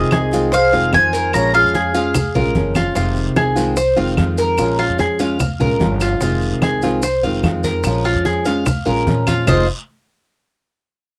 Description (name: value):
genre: latin, Cuban son and guajira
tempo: 147 BPM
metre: 4/4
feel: straight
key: F minor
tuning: A4 = 440 Hz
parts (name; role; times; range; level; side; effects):
- mandolin; melody; 0.0-2.7 s; Eb5 to Bb5; -19 LUFS; equal; cassette tape
- silver concert flute; second line; 0.0-2.7 s; Ab4 to Db5; -28 LUFS; equal; none
- nylon-string guitar; accompaniment; 0.0-9.6 s; F2 to F4; -23 LUFS; equal; none
- Cuban tres; arpeggios; 0.0-9.7 s; F4 to F5; -22 LUFS; equal; none
- upright bass; bass; 0.0-9.7 s; F1 to Bb2; -24 LUFS; equal; none
- bongos; percussion; 0.1-9.6 s; none; -29 LUFS; equal; none
- claves; percussion; 0.1-9.6 s; none; -30 LUFS; equal; none
- congas; percussion; 0.1-9.6 s; none; -23 LUFS; equal; none
- guiro; percussion; 0.1-9.6 s; none; -38 LUFS; equal; none
- maracas; percussion; 0.1-9.6 s; none; -36 LUFS; equal; none
room: light reverb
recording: home recording on cassette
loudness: -17 LUFS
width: mono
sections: 0.0-3.0 A section; 3.0-9.5 B section; 9.5-11.1 C section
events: drum fill 2.1-3.0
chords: 0.0 Fm7; 1.3 Bbm7; 3.0 Fm7; 4.6 Bbm7; 6.2 Fm7; 7.8 Bbm7; 9.5 F7(no3)